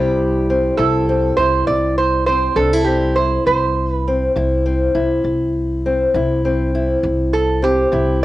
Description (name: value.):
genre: acoustic country blues, solo or duo.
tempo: 67 BPM (dotted quarters).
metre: 12/8.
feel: straight.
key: C major.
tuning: A4 = 440 Hz.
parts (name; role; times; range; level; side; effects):
fingerpicked old ladder-braced acoustic guitar; accompaniment; 0.0-8.2 s; C3 to G4; -18 LUFS; left 2 dB; cassette tape, plate reverb.
upright bass; bass; 0.0-8.2 s; C2; -21 LUFS; equal; none.
metal-body resonator slide guitar; melody; 0.8-8.2 s; G4 to D5; -17 LUFS; right 3 dB; cassette tape, plate reverb.
room: light reverb.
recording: home recording on cassette.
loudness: -15 LUFS.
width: side -16 dB against mid.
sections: 0.0-8.2 A section.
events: none.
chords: 0.0 C.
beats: 0.77 1.67 2.56 | 3.46 4.35 5.25 6.14 | 7.04 7.93.